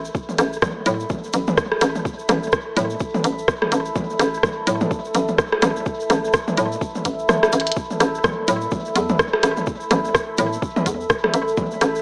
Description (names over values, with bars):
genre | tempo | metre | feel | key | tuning
minimal techno | 126 BPM | 4/4 | swing 59% on 16ths | unclear | A4 = 441 Hz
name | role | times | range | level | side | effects
hollow knocking FM bass | bass | 0.0-12.0 s | A1 to A2 | -21 LUFS | equal | sidechain pumping
egg shaker | percussion | 0.0-12.0 s | none | -37 LUFS | equal | tape echo
deep dark ambient pad | texture | 0.0-12.0 s | A4 to B5 | -26 LUFS | equal | chorus, built-in reverb, sidechain pumping
electronic kick drum | drums | 0.1-11.7 s | none | -26 LUFS | equal | studio reverb
techno drum kit | percussion | 0.3-11.9 s | percussion blips, rim click, toms | -22 LUFS | equal | studio reverb, tape echo
minimal click drum kit | drums | 0.4-11.9 s | hi-hat, rim click | -21 LUFS | equal | studio reverb, tape echo
room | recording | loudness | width
moderate plate reverb, RT60 2.0 s | echo-heavy mix, small speaker sound | -18 LUFS | side -32 dB against mid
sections
0.0-7.8 A section; 7.8-12.0 B section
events
kick drops out 7.3-7.8; drum fill 7.5; drop 7.8-12.0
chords
0.0 A5